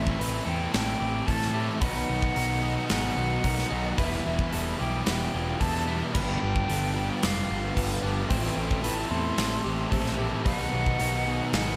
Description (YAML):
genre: rock, shoegaze and dream pop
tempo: 111 BPM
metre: 4/4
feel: straight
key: unclear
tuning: A4 = 440 Hz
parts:
  - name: hollow concert flute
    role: melody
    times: 0.0-11.8 s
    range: E5 to C6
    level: -36 LUFS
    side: equal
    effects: analog delay
  - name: clean electric guitar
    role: arpeggios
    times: 0.0-11.8 s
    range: F4 to C5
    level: -41 LUFS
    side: equal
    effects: subtle chorus, analog delay
  - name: distorted electric guitar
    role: riff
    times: 0.0-11.8 s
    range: G2 to E4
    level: -37 LUFS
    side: equal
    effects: overdrive
  - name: overdriven electric guitar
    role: riff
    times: 0.0-11.8 s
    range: G2 to F4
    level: -35 LUFS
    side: equal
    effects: reverse reverb
  - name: thick fuzz guitar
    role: riff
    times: 0.0-11.8 s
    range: E2 to B3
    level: -36 LUFS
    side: equal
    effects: distortion, subtle chorus
  - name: fuzz picked electric bass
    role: bass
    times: 0.0-11.7 s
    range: E1 to A2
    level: -34 LUFS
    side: equal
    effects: overdrive
  - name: gated 80s drum kit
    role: drums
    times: 0.1-11.7 s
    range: crash cymbal, hi-hat, kick drum, snare drum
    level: -34 LUFS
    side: equal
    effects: none
  - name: ethereal airy pad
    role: sustained chords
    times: 7.1-11.8 s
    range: D#4 to A#5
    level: -41 LUFS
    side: equal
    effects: ensemble chorus, built-in reverb
room: light reverb, small room ambience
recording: none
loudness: -27 LUFS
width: mono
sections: 0.0-11.8 A section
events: none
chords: 0.0 Am7; 1.8 Bmaj7; 4.0 Em; 6.1 G7; 8.3 Am7; 10.5 Bmaj7